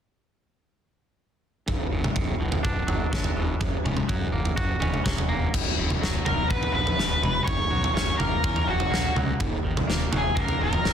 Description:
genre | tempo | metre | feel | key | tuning
quiet-loud alternative rock | 124 BPM | 4/4 | straight | unclear | A4 = 440 Hz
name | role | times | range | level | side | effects
twangy electric guitar | arpeggios | 1.7-10.9 s | B1 to F#4 | -32 LUFS | right 2 dB | tape echo
fuzz fingered electric bass | bass | 1.7-10.9 s | B0 to F#2 | -30 LUFS | equal | overdrive
big rock drum kit | drums | 1.7-10.9 s | crash cymbal, kick drum, snare drum, toms | -25 LUFS | equal | none
octave-fuzz lead guitar | melody | 6.3-10.9 s | F#4 to C#5 | -26 LUFS | left 2 dB | distortion
room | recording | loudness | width
little or no reverb | dense, heavily limited modern master | -22 LUFS | side -8 dB against mid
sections
1.7-5.5 A section; 5.5-10.9 B section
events
none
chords
1.7 Bm; 3.6 F#; 5.5 B5; 7.5 F#; 9.4 D#m

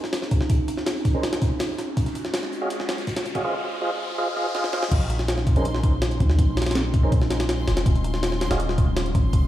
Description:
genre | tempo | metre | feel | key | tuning
drum and bass, jungle | 163 BPM | 4/4 | straight | Bb minor | A4 = 439 Hz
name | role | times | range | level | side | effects
warbly tape-like pad | sustained chords | 0.0-9.5 s | Gb3 to Ab4 | -30 LUFS | right 1 dB | chorus, built-in reverb, vintage 12-bit sampler grit
long sustained 808-style bass | bass | 0.0-9.5 s | Eb1 to Eb2 | -24 LUFS | equal | tube saturation, high-pass filter
jungle sampler-style drum kit | drums | 0.0-9.4 s | crash cymbal, hi-hat, kick drum, snare drum | -23 LUFS | equal | none
loose indie drum kit | drums | 0.0-3.3 s | hi-hat, snare drum | -42 LUFS | left 1 dB | high-pass filter on hats, high-pass filter on snare, high-pass filter on room
riser | sound effects | 0.7-4.9 s | none | -38 LUFS | left 1 dB | none
mellow tonewheel organ | stabs | 1.1-8.6 s | Db4 to F5 | -29 LUFS | right 1 dB | overdrive, fast rotary speaker, low-pass filter, dub echo
backwards swelling texture | texture | 5.5-9.5 s | C6 | -38 LUFS | equal | built-in reverb
room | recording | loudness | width
light reverb, digital ambience | played on a big sound system in a bare room, stone room reverb, high-pass filter | -21 LUFS | side -13 dB against mid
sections
0.0-4.9 A section; 4.9-9.5 B section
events
build-up 0.0-4.9; filter sweep on tonewheel organ 0.0-4.9; filter sweep 0.0-4.9; riser 0.7-4.9; drum fill 4.5-4.9; drop 4.9-9.5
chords
0.0 Bbm11; 2.0 Ebm11; 3.4 Fm7; 4.9 Bbm11; 7.9 Ebm11

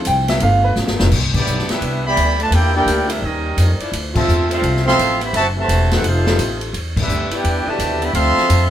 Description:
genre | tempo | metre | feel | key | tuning
jazz, big band swing | 171 BPM | 4/4 | swing 64% on 8ths | C major | A4 = 441 Hz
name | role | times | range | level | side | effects
warm concert grand piano | accompaniment | 0.0-1.1 s | F3 to G5 | -18 LUFS | right 1 dB | none
upright bass | bass | 0.0-8.7 s | E1 to F2 | -18 LUFS | equal | none
swinging big-band drum kit | drums | 0.0-8.6 s | crash cymbal, hi-hat, kick drum, ride cymbal, snare drum | -22 LUFS | left 1 dB | none
warm saxophone section | sustained chords | 1.0-8.7 s | E3 to D5 | -26 LUFS | left 3 dB | none
warm trombone section | second line | 1.3-8.7 s | B2 to G4 | -23 LUFS | right 1 dB | none
clear trumpet section | melody | 1.4-8.7 s | B3 to C6 | -19 LUFS | right 1 dB | none
room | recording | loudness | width
moderate studio reverb, RT60 0.5 s | band playing live in one room | -14 LUFS | side -11 dB against mid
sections
0.0-1.1 A section; 1.1-8.7 B section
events
grand piano solo 0.0-1.1; drum fill 0.8-1.1; band accent 1.3, 4.1, 6.9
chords
0.4 G9; 1.1 Cmaj9; 2.5 Em7b5; 3.2 Eb9; 3.9 Dm9; 5.3 F#m7b5; 6.0 F9; 6.7 Em7; 8.1 Dm9

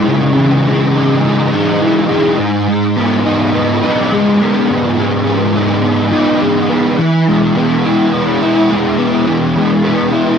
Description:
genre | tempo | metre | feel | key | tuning
rock | 104 BPM | 4/4 | straight | E major | A4 = 436 Hz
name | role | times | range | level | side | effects
fuzz guitar | solo | 0.0-10.4 s | G#2 to E4 | -10 LUFS | equal | distortion, ensemble chorus
room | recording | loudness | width
light reverb | dark, warm production | -10 LUFS | side -7 dB against mid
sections
0.0-7.0 A section; 7.0-10.4 A section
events
none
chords
0.0 C#madd9; 2.4 G#m; 7.0 E

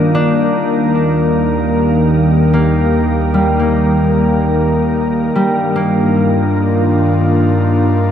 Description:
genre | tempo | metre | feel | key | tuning
ambient | 75 BPM | 3/4 | straight | Eb major | A4 = 440 Hz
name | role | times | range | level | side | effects
airy breathy pad | sustained chords | 0.0-8.1 s | Eb3 to Bb4 | -15 LUFS | left 1 dB | chorus
concert harp | arpeggios | 0.0-8.1 s | G3 to D4 | -18 LUFS | left 1 dB | tape echo
warm sub bass | bass | 0.0-8.1 s | Eb2 to G2 | -19 LUFS | right 1 dB | none
organ-like drone | drone | 0.0-8.1 s | Eb3 to Bb3 | -17 LUFS | equal | ensemble chorus, built-in reverb
room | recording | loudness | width
wet cathedral reverb, RT60 5.2 s | in a vast, echoing space | -11 LUFS | side -9 dB against mid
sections
0.0-8.1 A section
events
fade-in on sub bass 0.0-8.1; filter sweep on analog synth pad 0.0-8.1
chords
0.0 Gm7; 0.5 Eb; 5.3 Gm7

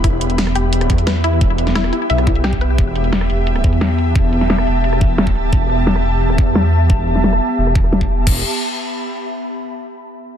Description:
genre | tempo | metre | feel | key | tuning
dark technical drum and bass | 175 BPM | 4/4 | straight | E minor | A4 = 444 Hz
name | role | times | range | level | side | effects
wide unison pluck | arpeggios | 0.0-2.8 s | E4 to E5 | -22 LUFS | left 3 dB | sidechain pumping, ping-pong delay
wide detuned saw bass | bass | 0.0-8.4 s | E1 to E2 | -17 LUFS | equal | chorus, overdrive
dubstep drum kit | drums | 0.0-8.3 s | crash cymbal, hi-hat, rim click, snare drum | -20 LUFS | left 1 dB | low-pass filter on hats, low-pass filter on perc, low-pass filter on snare, low-pass filter on cymbals
electronic kick drum | drums | 0.0-8.3 s | none | -16 LUFS | equal | none
ethereal airy pad | texture | 0.0-9.6 s | B3 to B5 | -20 LUFS | equal | ensemble chorus, built-in reverb, sidechain pumping
room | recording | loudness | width
light reverb | dense, heavily limited modern master | -14 LUFS | side -9 dB against mid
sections
0.0-8.3 A section; 8.3-9.6 B section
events
filter sweep on drum 0.0-8.3; filter sweep on detuned saw bass 0.0-8.3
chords
0.0 Em

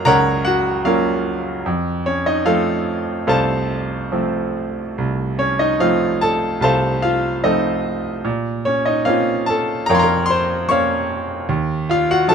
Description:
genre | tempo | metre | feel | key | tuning
classical, lyrical solo piano | 74 BPM | 4/4 | rubato | unclear | A4 = 440 Hz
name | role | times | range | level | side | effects
bright grand piano | solo | 0.0-12.3 s | C2 to Db6 | -16 LUFS | equal | none
room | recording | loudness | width
light reverb | close, detailed microphones | -16 LUFS | side -7 dB against mid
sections
0.0-12.3 A section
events
none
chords
0.0 Gb; 1.7 F; 8.3 Bbmadd9; 11.5 Ebmadd9

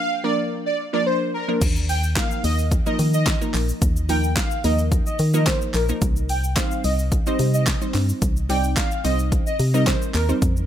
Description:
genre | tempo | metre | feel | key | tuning
dance-pop | 109 BPM | 4/4 | straight | Eb major | A4 = 440 Hz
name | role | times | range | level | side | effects
airy dreamy lead | melody | 0.0-10.2 s | Bb4 to G5 | -26 LUFS | right 1 dB | chorus, sidechain pumping, digital delay
glassy wavetable pluck | accompaniment | 0.0-10.4 s | F3 to D5 | -26 LUFS | right 1 dB | chorus, sidechain pumping
organ-like FM bass | bass | 1.6-10.7 s | Bb1 to Eb3 | -21 LUFS | equal | sidechain pumping
deep house drum kit | drums | 1.6-10.7 s | crash cymbal, handclaps, hi-hat, kick drum, shaker, snare drum | -23 LUFS | equal | none
room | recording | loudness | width
digital ambience | none | -19 LUFS | side -10 dB against mid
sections
0.0-1.6 A section; 1.6-10.7 A section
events
break 0.0-1.6; drop 0.0-1.6, 1.6-10.7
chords
0.0 Bb; 1.6 Ebsus2; 6.0 Cm

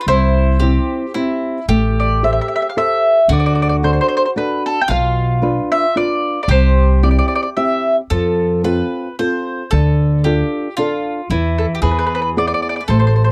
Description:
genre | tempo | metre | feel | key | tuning
italian folk, Italian serenade | 112 BPM | 3/4 | straight | A minor | A4 = 442 Hz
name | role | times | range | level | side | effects
mandolin | melody | 0.0-8.0, 11.6-13.3 s | A4 to G5 | -19 LUFS | equal | none
mandolin | second line | 0.0-13.3 s | E4 to C5 | -27 LUFS | equal | none
nylon-string guitar | accompaniment | 0.1-13.3 s | B2 to C5 | -22 LUFS | equal | none
upright bass | bass | 0.1-13.3 s | A1 to F2 | -18 LUFS | equal | none
room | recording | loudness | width
little or no reverb | dry, close 1970s-style studio recording | -16 LUFS | mono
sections
0.0-1.7 A section; 1.7-13.3 B section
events
none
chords
0.1 C; 1.7 Am7; 3.3 D; 4.9 Bdim; 6.5 C; 8.1 F; 9.7 Dm; 11.3 N.C.; 11.8 E

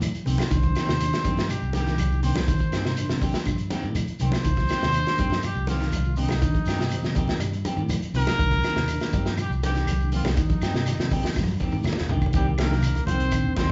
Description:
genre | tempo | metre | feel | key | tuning
afrobeat | 122 BPM | 4/4 | straight | C minor | A4 = 441 Hz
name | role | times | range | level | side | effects
semi-hollow electric guitar | arpeggios | 0.0-13.7 s | C3 to G3 | -33 LUFS | equal | none
fingered electric bass | bass | 0.0-13.7 s | Bb1 to C3 | -30 LUFS | equal | none
crunchy breakbeat drum kit | drums | 0.0-13.7 s | hi-hat, kick drum, snare drum, toms | -30 LUFS | equal | none
claves | percussion | 0.0-13.4 s | none | -45 LUFS | equal | none
congas | percussion | 0.0-13.7 s | none | -34 LUFS | equal | none
shekere | percussion | 0.0-13.7 s | none | -39 LUFS | equal | none
clear trumpet | melody | 0.3-13.7 s | Eb4 to C5 | -33 LUFS | equal | none
mellow reed electric piano | accompaniment | 0.3-13.6 s | Eb3 to D5 | -36 LUFS | equal | none
semi-hollow electric guitar | stabs | 0.3-13.7 s | Eb3 to G4 | -36 LUFS | equal | none
warm trombone | second line | 12.4-13.7 s | G3 to C4 | -34 LUFS | equal | none
room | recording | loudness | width
wet large studio reverb, RT60 0.7 s | band playing live in one room, nothing above 7.7 kHz | -24 LUFS | mono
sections
0.0-12.3 A section; 12.3-13.7 B section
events
drum fill 11.4-12.3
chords
0.0 Cm7

